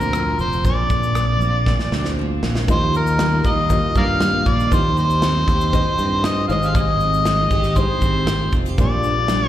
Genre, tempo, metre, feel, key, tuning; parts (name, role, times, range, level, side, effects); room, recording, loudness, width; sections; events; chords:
acoustic pop; 118 BPM; 4/4; straight; Eb major; A4 = 439 Hz
overdriven harmonica; melody; 0.0-9.5 s; Bb4 to F5; -21 LUFS; left 1 dB; plate reverb, slapback echo, tape echo
picked steel-string acoustic guitar; accompaniment; 0.0-9.5 s; Bb2 to G4; -25 LUFS; equal; double-tracked left and right, slapback echo
fingered electric bass; bass; 0.0-9.5 s; F1 to G2; -21 LUFS; equal
modern studio drum kit; drums; 0.0-9.4 s; kick drum, rim click, shaker, snare drum; -22 LUFS; equal
felt-muted upright piano; accompaniment; 2.7-9.5 s; Ab3 to Eb5; -29 LUFS; left 2 dB; plate reverb, slapback echo
light reverb; live gig heard through the venue's PA, recital hall reverb; -16 LUFS; side -12 dB against mid
0.0-2.7 A section; 2.7-9.5 B section
drum fill 1.7-2.7
0.0 Bbadd9; 2.7 Ebadd9; 4.7 Cm/Eb; 6.5 Abmaj7; 8.8 Bb6